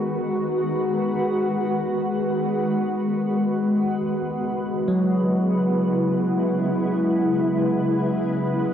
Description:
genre	ambient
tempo	free time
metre	none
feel	none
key	unclear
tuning	A4 = 440 Hz
part	shimmering ambient pad	sustained chords	0.0-8.7 s	C#3 to B4	-21 LUFS	left 1 dB	chorus, built-in reverb, cassette tape
part	bell-like tine electric piano	arpeggios	0.0-8.7 s	F#3 to G#4	-26 LUFS	right 1 dB	cassette tape, analog delay
room	wet spring reverb, RT60 2.5 s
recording	home recording on cassette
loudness	-20 LUFS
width	side -9 dB against mid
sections	0.0-8.7 A section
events	none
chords	0.0 G#m7; 3.8 C#m7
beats	free time

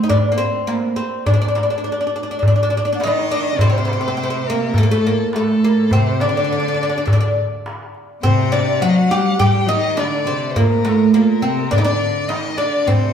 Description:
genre	Arabic maqam ensemble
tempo	103 BPM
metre	4/4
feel	straight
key	D maqam hijaz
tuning	A4 = 437 Hz
part	oud	melody	0.0-13.1 s	A3 to G4	-18 LUFS	right 1 dB	none
part	darbuka	percussion	0.1-13.0 s	none	-19 LUFS	equal	none
part	dark violin	second line	2.9-13.1 s	A4 to G5	-25 LUFS	left 3 dB	none
part	clear chamber cello section	second line	3.0-13.1 s	A2 to G3	-21 LUFS	left 2 dB	none
room	wet stone room reverb, RT60 1.3 s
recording	band playing live in one room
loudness	-15 LUFS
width	side -8 dB against mid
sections	0.0-3.6 A section; 3.6-13.1 B section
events	none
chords	none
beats	0.11 0.69 | 1.27 1.85 2.44 3.02 | 3.60 4.18 4.76 5.34 | 5.92 6.50 7.08 7.66 | 8.24 8.82 9.40 9.98 | 10.56 11.14 11.72 12.30 | 12.88

